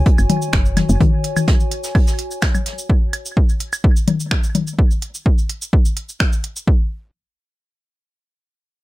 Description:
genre	minimal techno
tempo	127 BPM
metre	4/4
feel	straight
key	unclear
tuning	A4 = 439 Hz
part	woody FM bass	bass	0.0-1.0 s	F#1	-16 LUFS	equal	tube saturation, sidechain pumping
part	warbly tape-like pad	texture	0.0-2.9 s	F#4 to G#5	-28 LUFS	left 1 dB	chorus, built-in reverb, sidechain pumping
part	electronic kick drum	drums	0.1-6.8 s	none	-15 LUFS	equal	overdrive
part	jazz brush drum kit	drums	0.1-2.8 s	hi-hat, snare drum	-30 LUFS	right 2 dB	high-pass filter on hats, high-pass filter on snare, high-pass filter on room
part	techno drum kit	drums	0.2-6.7 s	cabasa, finger snaps, hi-hat	-25 LUFS	right 1 dB	none
part	electronic woodblock, toms and congas	percussion	0.2-4.6 s	none	-20 LUFS	left 4 dB	dub echo
room	little or no reverb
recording	none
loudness	-15 LUFS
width	side -18 dB against mid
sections	0.0-6.7 A section; 6.7-8.8 B section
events	drop 0.0-6.7; band accent 6.2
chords	0.0 F#5; 6.7 N.C.

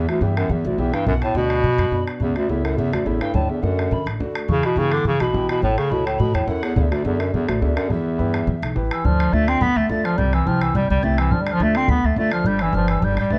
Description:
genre	celtic folk, Celtic reel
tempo	211 BPM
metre	4/4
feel	swing 53% on 8ths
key	E dorian, D dorian from 9.0 s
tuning	A4 = 440 Hz
part	warm bass clarinet	melody	0.0-13.4 s	D2 to C4	-23 LUFS	equal	plate reverb
part	mellow hollow wooden whistle	second line	0.0-13.4 s	D5 to C7	-33 LUFS	equal	tape echo
part	warm grand piano	accompaniment	0.0-13.4 s	B2 to C#5	-30 LUFS	equal	none
part	upright bass	bass	0.0-13.4 s	G1 to E3	-26 LUFS	equal	none
part	bodhran	percussion	0.0-13.4 s	none	-30 LUFS	equal	none
room	light reverb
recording	dark, warm production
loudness	-20 LUFS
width	mono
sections	0.0-9.0 A section; 9.0-13.4 B section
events	none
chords	0.0 Em; 1.1 Bm; 2.2 A/C#; 3.3 D; 4.5 Em; 5.6 A; 6.8 D; 7.9 Em; 9.0 Dm; 10.2 C; 11.3 Dm; 12.5 G

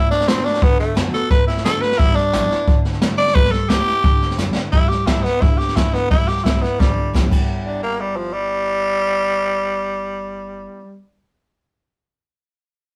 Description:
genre	rockabilly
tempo	175 BPM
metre	4/4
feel	straight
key	G major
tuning	A4 = 440 Hz
part	growling tenor saxophone	melody	0.0-11.0 s	F3 to D5	-22 LUFS	equal	none
part	picked steel-string acoustic guitar	accompaniment	0.0-10.8 s	A2 to F#4	-30 LUFS	equal	none
part	upright bass	bass	0.0-10.6 s	G1 to B2	-32 LUFS	equal	none
part	jazz brush drum kit	drums	0.1-7.4 s	crash cymbal, hi-hat, kick drum, snare drum	-19 LUFS	equal	none
room	light reverb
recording	rough rehearsal-room recording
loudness	-18 LUFS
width	mono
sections	0.0-4.7 A section; 4.7-7.5 B section; 7.5-10.2 C section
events	drum fill 4.4-4.7, 6.8-7.5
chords	0.0 D6; 2.0 G6

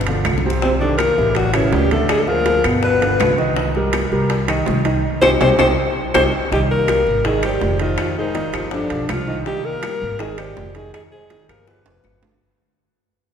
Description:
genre	Afro-Cuban jazz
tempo	163 BPM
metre	4/4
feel	straight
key	C minor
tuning	A4 = 443 Hz
part	upright bass	bass	0.0-12.4 s	F1 to D2	-22 LUFS	equal	none
part	bongos	percussion	0.0-12.4 s	none	-27 LUFS	left 4 dB	none
part	warm grand piano	accompaniment	0.1-12.4 s	B2 to Eb5	-22 LUFS	right 2 dB	none
part	timbales	percussion	0.1-12.3 s	none	-26 LUFS	right 4 dB	none
part	claves	percussion	0.3-12.2 s	none	-30 LUFS	left 5 dB	none
part	warm alto saxophone	melody	0.6-12.2 s	C4 to C5	-20 LUFS	left 1 dB	none
part	trombone with cup mute	second line	0.6-12.2 s	C3 to C4	-26 LUFS	left 4 dB	none
room	wet church reverb, RT60 3.2 s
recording	recorded in a church or concert hall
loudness	-15 LUFS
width	side -8 dB against mid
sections	0.0-6.5 A section; 6.5-12.4 B section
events	drum fill 0.0-0.6, 5.6-6.5, 11.9-12.4; band accent 5.0-6.5; fade-out 6.5-12.4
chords	0.0 G7(no3); 0.6 Cm7; 1.4 A7; 2.1 Ddim; 2.8 G7; 3.6 Cm7; 7.2 Abmaj7; 8.0 Fm7; 8.7 G7; 9.5 Ebadd11; 10.2 Abmaj7; 10.9 Fm7; 11.7 G7

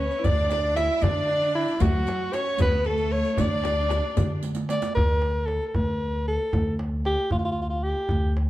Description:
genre	Persian modal ensemble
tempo	76 BPM (dotted quarters)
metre	6/8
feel	straight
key	D dastgah mahur, D avaz esfahan from 5.0 s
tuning	A4 = 442 Hz
part	mellow soprano saxophone	melody	0.0-8.4 s	E4 to E5	-26 LUFS	equal	none
part	clear studio cello section	second line	0.0-4.4 s	F#3 to E4	-32 LUFS	right 2 dB	none
part	rich violin	second line	0.0-4.4 s	F#4 to E5	-35 LUFS	left 5 dB	none
part	upright bass	bass	0.0-8.5 s	D2 to D3	-26 LUFS	equal	none
part	riq	percussion	0.1-4.9 s	none	-36 LUFS	right 6 dB	none
part	tombak	percussion	0.2-8.5 s	none	-29 LUFS	right 1 dB	none
part	frame drum	percussion	0.3-4.3 s	none	-32 LUFS	left 4 dB	none
room	light reverb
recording	dark, warm production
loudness	-22 LUFS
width	side -15 dB against mid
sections	0.0-5.0 A section; 5.0-8.5 B section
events	drum fill 4.4-5.0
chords	none

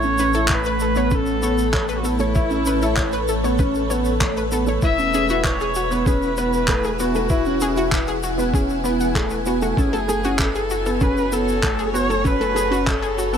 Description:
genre	piano and strings electronica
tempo	97 BPM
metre	4/4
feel	straight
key	A major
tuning	A4 = 440 Hz
part	dark viola	melody	0.0-13.4 s	E4 to E5	-24 LUFS	equal	ping-pong delay
part	granular cloud pad	sustained chords	0.0-13.4 s	A3 to A5	-26 LUFS	equal	built-in reverb, sidechain pumping
part	felt-muted upright piano	riff	0.0-13.4 s	A3 to E4	-23 LUFS	right 1 dB	ping-pong delay
part	warm sub bass	bass	0.0-13.4 s	E1 to A1	-27 LUFS	equal	sidechain pumping
part	shaker and handclaps	drums	0.0-13.4 s	none	-28 LUFS	equal	none
part	analog pluck	arpeggios	0.2-13.4 s	F#4 to F#5	-28 LUFS	left 3 dB	chorus, sidechain pumping, ping-pong delay
part	electronic kick drum	drums	0.5-13.0 s	none	-22 LUFS	equal	none
room	light reverb, studio ambience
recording	none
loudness	-18 LUFS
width	side -8 dB against mid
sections	0.0-13.4 A section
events	none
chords	0.0 Aadd9; 4.8 Eadd9; 9.8 F#madd9

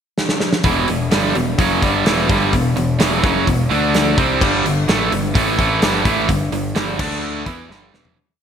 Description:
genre	hard rock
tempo	128 BPM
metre	4/4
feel	straight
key	E minor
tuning	A4 = 440 Hz
part	big rock drum kit	drums	0.2-8.2 s	crash cymbal, hi-hat, kick drum, snare drum, toms	-19 LUFS	equal	gated reverb
part	distorted electric guitar	riff	0.6-8.2 s	E2 to E4	-19 LUFS	right 7 dB	overdrive
part	overdriven electric guitar	riff	0.6-8.2 s	E2 to E4	-22 LUFS	left 9 dB	none
part	fuzz picked electric bass	bass	0.6-8.2 s	E1 to E2	-23 LUFS	left 1 dB	overdrive
room	moderate plate reverb, RT60 2.2 s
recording	bright 1980s-style digital production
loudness	-14 LUFS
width	side -8 dB against mid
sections	0.0-0.6 pickup bar; 0.6-8.2 riff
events	drum fill 0.2-0.6, 7.7-8.2; fade-out 6.3-8.2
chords	0.0 N.C.; 0.6 Em; 3.7 D5; 4.2 C5; 4.4 G5; 7.0 D5; 7.5 G5

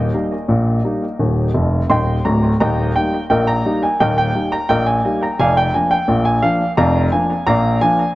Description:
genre	ragtime piano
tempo	86 BPM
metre	2/4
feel	straight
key	Eb major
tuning	A4 = 436 Hz
part	warm grand piano	solo	0.0-8.1 s	D1 to C6	-14 LUFS	equal	analog delay
room	moderate spring reverb, RT60 1.7 s, studio reverb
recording	dark, warm production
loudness	-14 LUFS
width	side -17 dB against mid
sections	0.0-2.6 A section; 2.6-8.2 A section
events	grand piano fill 1.5-2.6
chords	0.0 Eb; 5.4 Bb/F

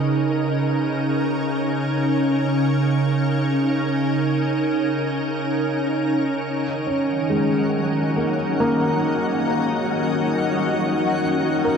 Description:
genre	ambient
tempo	free time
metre	none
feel	none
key	unclear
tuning	A4 = 440 Hz
part	soft additive organ-like pad	sustained chords	0.0-11.8 s	Db3 to Eb5	-20 LUFS	right 1 dB	ensemble chorus, built-in reverb, shimmer reverb
part	twinkling granular texture	texture	7.1-11.8 s	Gb3 to Gb5	-27 LUFS	left 1 dB	built-in reverb, shimmer reverb
part	felt-muted upright piano	arpeggios	6.9-11.8 s	Ab3 to Bb4	-23 LUFS	equal	ping-pong delay, shimmer reverb
room	wet huge ambient reverb, RT60 8.5 s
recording	dark, warm production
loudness	-19 LUFS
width	side -6 dB against mid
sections	0.0-11.8 A section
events	none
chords	0.0 Dbsus2; 6.4 Ebm7

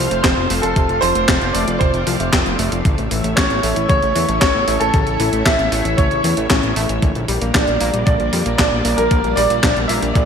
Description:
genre	italo disco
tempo	115 BPM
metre	4/4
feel	straight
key	unclear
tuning	A4 = 440 Hz
part	clear baby grand piano	melody	0.0-10.3 s	A4 to E5	-19 LUFS	right 1 dB	lush chorus, digital delay
part	string machine, full ensemble	sustained chords	0.0-10.3 s	G3 to F5	-24 LUFS	equal	ensemble chorus
part	analog pluck	arpeggios	0.0-10.3 s	C3 to D4	-24 LUFS	left 4 dB	chorus, digital delay
part	fat analog bass	bass	0.0-10.3 s	F1 to F2	-22 LUFS	equal	none
part	clean 12-bit digital drum machine	drums	0.1-10.3 s	handclaps, hi-hat, snare drum	-20 LUFS	equal	overdrive, gated reverb
part	electronic kick drum	drums	0.2-10.3 s	none	-17 LUFS	equal	overdrive
room	moderate lush hall reverb, RT60 1.8 s, digital ambience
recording	bright 1980s-style digital production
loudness	-14 LUFS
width	side -7 dB against mid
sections	0.0-10.3 A section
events	none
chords	0.0 F; 2.9 A; 7.0 Gm/Bb

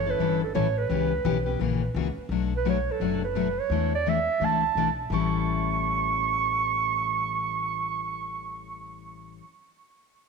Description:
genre	acoustic string swing (jazz manouche)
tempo	171 BPM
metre	4/4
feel	swing 61% on 8ths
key	A mixolydian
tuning	A4 = 439 Hz
part	dark clarinet	melody	0.0-8.7 s	A4 to C#6	-27 LUFS	right 7 dB	tape echo
part	upright bass	bass	0.0-9.4 s	F#1 to E2	-32 LUFS	left 1 dB	none
part	picked steel-string acoustic guitar	accompaniment	0.1-9.4 s	A2 to A4	-29 LUFS	left 12 dB	none
room	wet echo chamber reverb, RT60 1.3 s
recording	1960s-style stereo with parts hard left and right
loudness	-24 LUFS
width	side -4 dB against mid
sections	0.0-2.3 A section; 2.3-5.1 B section; 5.1-7.9 C section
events	none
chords	0.0 A7; 0.9 C#m7b5; 1.6 F#7; 2.3 Bm7; 3.7 E7sus4; 5.1 A7

